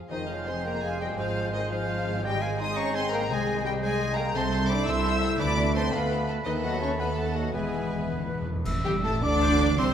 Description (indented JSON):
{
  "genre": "classical, dramatic, fast romantic movement for symphony orchestra",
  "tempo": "105-116 BPM (dotted quarters)",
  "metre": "6/8",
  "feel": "straight",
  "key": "F minor, A minor from 4.3 s",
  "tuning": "A4 = 438 Hz",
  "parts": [
    { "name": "concert harp", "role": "arpeggios", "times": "0.0-9.9 s", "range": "Ab2 to C6", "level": "-35 LUFS", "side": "left 7 dB", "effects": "none" },
    { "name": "clear symphonic violin section", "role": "melody", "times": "0.1-9.9 s", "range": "Eb5 to E6", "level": "-34 LUFS", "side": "left 3 dB", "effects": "none" },
    { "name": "clear oboe", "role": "second line", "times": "0.1-9.9 s", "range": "B4 to E5", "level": "-37 LUFS", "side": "right 1 dB", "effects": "none" },
    { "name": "clear symphonic violin section", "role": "second line", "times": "0.1-9.9 s", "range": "B3 to D5", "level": "-38 LUFS", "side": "left 2 dB", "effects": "none" },
    { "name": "concert flute", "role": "second line", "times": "0.1-9.9 s", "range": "B4 to D6", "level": "-34 LUFS", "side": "left 1 dB", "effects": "none" },
    { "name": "mellow bassoon", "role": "accompaniment", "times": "0.1-8.5 s", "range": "Ab3 to B3", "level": "-35 LUFS", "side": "right 3 dB", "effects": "none" },
    { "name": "warm studio viola section", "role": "accompaniment", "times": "0.1-9.9 s", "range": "G3 to E5", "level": "-35 LUFS", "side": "right 2 dB", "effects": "none" },
    { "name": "mellow French horn section", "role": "sustained chords", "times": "0.1-9.9 s", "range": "Eb3 to E4", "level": "-33 LUFS", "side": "left 4 dB", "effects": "none" },
    { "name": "rich studio double bass section", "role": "bass", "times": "0.1-9.9 s", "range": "E1 to D#2", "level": "-32 LUFS", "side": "right 3 dB", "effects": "none" },
    { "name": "rich symphonic cello section", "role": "bass", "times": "0.1-9.9 s", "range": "C2 to D4", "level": "-33 LUFS", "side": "right 4 dB", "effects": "none" },
    { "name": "timpani", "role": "percussion", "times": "7.6-9.2 s", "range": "E2 to A2", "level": "-35 LUFS", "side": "right 1 dB", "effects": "none" },
    { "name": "clash cymbals and concert bass drum", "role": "percussion", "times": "8.7-9.4 s", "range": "none", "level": "-36 LUFS", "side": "right 1 dB", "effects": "none" },
    { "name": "warm trombone section", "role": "sustained chords", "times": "8.8-9.9 s", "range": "G2 to D3", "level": "-34 LUFS", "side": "right 4 dB", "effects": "none" },
    { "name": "dark trumpet section", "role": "stabs", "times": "8.8-9.9 s", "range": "G4 to D5", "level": "-34 LUFS", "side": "equal", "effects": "none" }
  ],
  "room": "moderate scoring stage reverb, RT60 2.0 s",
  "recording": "none",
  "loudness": "-24 LUFS",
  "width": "side -9 dB against mid",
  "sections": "0.1-8.7 A section; 8.7-9.9 B section",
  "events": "timpani fill 7.5-8.7; band accent 8.7-9.0",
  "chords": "0.1 Fm; 1.2 Fm/Ab; 2.2 Ab; 3.3 Ab/C; 4.3 Am/C; 5.4 Bm7b5/D; 6.5 B7/D#; 7.5 E; 8.7 Am"
}